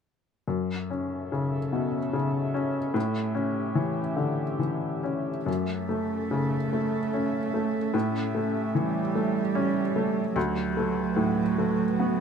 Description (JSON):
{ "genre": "neoclassical piano and strings", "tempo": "74 BPM", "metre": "3/4", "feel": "rubato", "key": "F# minor", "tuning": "A4 = 440 Hz", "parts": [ { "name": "clear upright piano", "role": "accompaniment", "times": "0.5-12.2 s", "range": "D2 to C#4", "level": "-26 LUFS", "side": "left 2 dB", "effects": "none" }, { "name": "warbly tape-like pad", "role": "sustained chords", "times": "0.8-12.2 s", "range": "A3 to E5", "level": "-34 LUFS", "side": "right 1 dB", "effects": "chorus, built-in reverb" }, { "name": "warm cello", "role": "second line", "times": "5.5-12.2 s", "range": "F#3 to A3", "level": "-30 LUFS", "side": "right 9 dB", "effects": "none" } ], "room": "light reverb", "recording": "none", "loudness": "-25 LUFS", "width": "side -7 dB against mid", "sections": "0.5-5.5 A section; 5.5-12.2 B section", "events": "none", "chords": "0.5 F#m7; 3.0 A7; 5.5 F#m7; 7.9 A7; 10.4 D6" }